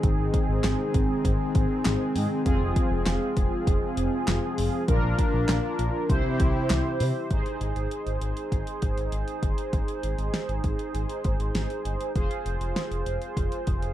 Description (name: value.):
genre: synth-pop.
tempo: 99 BPM.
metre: 4/4.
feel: straight.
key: unclear.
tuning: A4 = 438 Hz.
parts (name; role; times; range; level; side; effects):
mellow synth brass; accompaniment; 0.0-13.9 s; C4 to C5; -29 LUFS; right 1 dB; chorus.
warm analog pad; sustained chords; 0.0-7.3 s; C3 to G4; -31 LUFS; left 2 dB; lush chorus.
smooth gliding synth bass; bass; 0.0-13.9 s; F1 to C3; -29 LUFS; equal; none.
deep house drum kit; drums; 0.0-13.9 s; handclaps, hi-hat, kick drum, snare drum; -26 LUFS; equal; none.
room: light reverb.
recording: dark, warm production.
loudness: -24 LUFS.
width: side -12 dB against mid.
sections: 0.0-7.3 A section; 7.3-13.9 B section.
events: none.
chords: 0.0 Ab; 2.5 Fm; 4.9 Bb; 6.1 C; 7.3 Ab; 12.2 Fm.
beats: | 0.04 0.64 1.25 1.85 | 2.46 3.06 3.67 4.28 | 4.88 5.49 6.10 6.70 | 7.31 7.91 8.52 9.13 | 9.73 10.34 10.94 11.55 | 12.16 12.76 13.37.